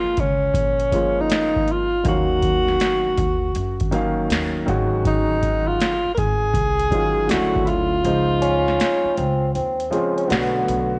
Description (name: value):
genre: hip hop, jazz-hop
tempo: 80 BPM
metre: 4/4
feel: swing 66% on 16ths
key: unclear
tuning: A4 = 441 Hz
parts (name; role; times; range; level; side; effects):
- breathy tenor saxophone; melody; 0.0-9.9 s; Db4 to Bb4; -23 LUFS; equal; cassette tape
- warm upright piano; accompaniment; 0.0-11.0 s; Db3 to F5; -26 LUFS; equal; none
- upright bass; bass; 0.0-11.0 s; Ab1 to Gb2; -29 LUFS; equal; none
- booming analog drum machine; drums; 0.2-10.9 s; hi-hat, kick drum, snare drum; -27 LUFS; equal; cassette tape
- trombone with cup mute; second line; 8.4-11.0 s; B3 to Db4; -25 LUFS; equal; none
room: light reverb, small room ambience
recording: home recording on cassette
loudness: -20 LUFS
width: mono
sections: 0.0-11.0 A section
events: kick muted 8.1-11.0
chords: 0.0 Bbm7; 2.1 Ebm9; 4.7 Ab7sus4; 7.3 Dmaj9; 8.1 Dbmaj9; 10.3 Bm7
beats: 0.55 1.30 | 2.05 2.80 3.55 4.30 | 5.05 5.80 6.55 7.30 | 8.05 8.80 9.55 10.30